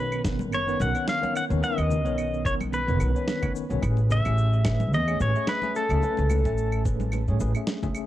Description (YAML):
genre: sunset chillout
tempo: 109 BPM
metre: 4/4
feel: swing 54% on 16ths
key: unclear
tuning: A4 = 440 Hz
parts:
  - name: pedal steel guitar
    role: melody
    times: 0.0-6.8 s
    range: A4 to F#5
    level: -28 LUFS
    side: left 1 dB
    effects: tape echo
  - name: tine electric piano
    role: accompaniment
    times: 0.0-8.1 s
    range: D#3 to G#5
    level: -31 LUFS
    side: moving between left 5 dB and right 5 dB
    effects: overdrive, fast stereo tremolo, auto-pan
  - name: upright bass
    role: bass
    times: 0.0-7.5 s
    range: F#1 to A2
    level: -25 LUFS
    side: equal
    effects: none
  - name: electronic claves, shaker and snare drum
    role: drums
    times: 0.1-8.1 s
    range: none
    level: -33 LUFS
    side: right 1 dB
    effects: overdrive
  - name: electronic kick drum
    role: drums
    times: 0.2-7.9 s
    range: none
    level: -30 LUFS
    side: equal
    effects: overdrive
  - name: congas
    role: percussion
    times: 0.4-7.9 s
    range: none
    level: -37 LUFS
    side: left 3 dB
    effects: none
room: little or no reverb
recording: dry, gritty hardware recording, cassette tape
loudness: -22 LUFS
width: side -14 dB against mid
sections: 0.0-8.1 A section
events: none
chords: 0.0 Bmaj9; 3.8 Amaj9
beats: 0.52 1.07 | 1.62 2.17 2.73 3.27 | 3.83 4.38 4.93 5.48 | 6.03 6.58 7.13 7.68